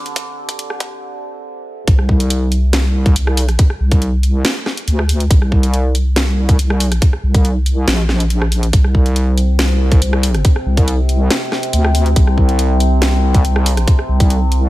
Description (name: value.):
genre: deep dubstep.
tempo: 140 BPM.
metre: 4/4.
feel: half-time.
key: unclear.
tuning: A4 = 436 Hz.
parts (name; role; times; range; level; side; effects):
overtone-sweeping drone; sustained chords; 0.0-1.9, 9.3-14.7 s; C3 to C4; -23 LUFS; left 1 dB; chorus, built-in reverb.
garage drum kit; drums; 0.1-14.6 s; hi-hat, rim click, snare drum; -20 LUFS; equal; studio reverb.
electronic kick drum; drums; 0.2-14.3 s; none; -12 LUFS; equal; high-pass filter on kick, studio reverb.
deep soft wobble bass; bass; 1.9-14.7 s; Bb1 to D2; -14 LUFS; equal; chorus.
room: digital ambience.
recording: high-pass filter.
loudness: -12 LUFS.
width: side -17 dB against mid.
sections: 0.0-1.9 A section; 1.9-14.7 B section.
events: build-up 0.0-1.9; filter sweep 0.0-1.9; break 1.0-1.9; drop 1.9-14.7.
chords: none.